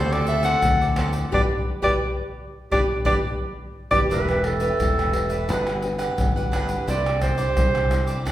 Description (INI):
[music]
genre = samba and choro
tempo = 86 BPM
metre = 4/4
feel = straight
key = G major, E minor from 4.1 s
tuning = A4 = 440 Hz
[part]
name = warm soprano saxophone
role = melody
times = 0.0-4.0 s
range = C5 to F#5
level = -24 LUFS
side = left 1 dB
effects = none
[part]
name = clear clarinet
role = second line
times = 0.0-8.2 s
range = G4 to D5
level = -26 LUFS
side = right 3 dB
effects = none
[part]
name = cavaquinho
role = accompaniment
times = 0.0-8.3 s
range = D4 to F#5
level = -31 LUFS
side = right 2 dB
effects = none
[part]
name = nylon-string guitar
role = accompaniment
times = 0.0-8.3 s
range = A2 to B4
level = -30 LUFS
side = left 2 dB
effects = none
[part]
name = overdriven fingered electric bass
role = bass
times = 0.0-8.3 s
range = E1 to D2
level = -27 LUFS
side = equal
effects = none
[part]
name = tube shaker, pandeiro, tamborim and surdo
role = percussion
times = 0.1-8.3 s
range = none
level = -26 LUFS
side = equal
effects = none
[sound]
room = wet recital hall reverb, RT60 1.5 s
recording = recorded in a church or concert hall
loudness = -20 LUFS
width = side -13 dB against mid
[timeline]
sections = 0.0-4.1 A section; 4.1-8.3 B section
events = band accent 1.3-4.1; clarinet solo 4.1-8.3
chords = 0.0 D7; 1.3 Gmaj7; 4.1 Em7; 5.5 Gmaj7; 6.9 Cadd9